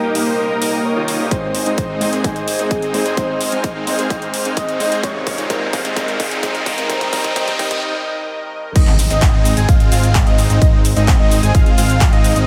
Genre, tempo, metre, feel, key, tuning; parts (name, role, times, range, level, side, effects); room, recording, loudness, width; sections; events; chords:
EDM, festival progressive house; 129 BPM; 4/4; straight; Ab major; A4 = 441 Hz
breathy flute-like synth lead; melody; 0.0-7.8 s; Ab4 to Eb5; -27 LUFS; equal; subtle chorus, diffuse ambient delay
dark baby grand piano; accompaniment; 0.0-8.8 s; G2 to Db5; -27 LUFS; equal; sidechain pumping, diffuse ambient delay
lush unison pad; sustained chords; 0.0-12.4 s; Ab3 to F6; -29 LUFS; equal; chorus, sidechain pumping
supersaw chords; riff; 0.0-12.5 s; G3 to C5; -24 LUFS; equal; cassette tape, sidechain pumping, low-pass filter, diffuse ambient delay
fat analog bass; bass; 0.0-12.5 s; Eb1 to Ab2; -24 LUFS; equal
big-room dance drum kit; drums; 0.2-12.5 s; crash cymbal, handclaps, hi-hat, shaker; -26 LUFS; equal
electronic kick drum; drums; 1.3-12.1 s; -17 LUFS; equal
riser and impact; sound effects; 3.9-10.6 s; -29 LUFS; equal
unison lead; arpeggios; 8.8-12.5 s; Eb5 to Ab5; -24 LUFS; equal; sidechain pumping, diffuse ambient delay
moderate lush hall reverb, RT60 1.8 s; dreamy mix soaked in reverb, high-pass filter; -16 LUFS; mono
0.0-8.8 A section; 8.8-12.5 B section
build-up 0.0-8.8; filter sweep on supersaw synth 0.0-8.8; filter sweep 0.0-8.8; drum fill 1.3-7.8; riser 3.9-7.8; break 7.8-8.8; drop 8.8-12.5; impact 8.8-10.6
0.0 Eb; 1.3 Ab; 5.0 Bbm; 6.9 Eb; 8.8 Ab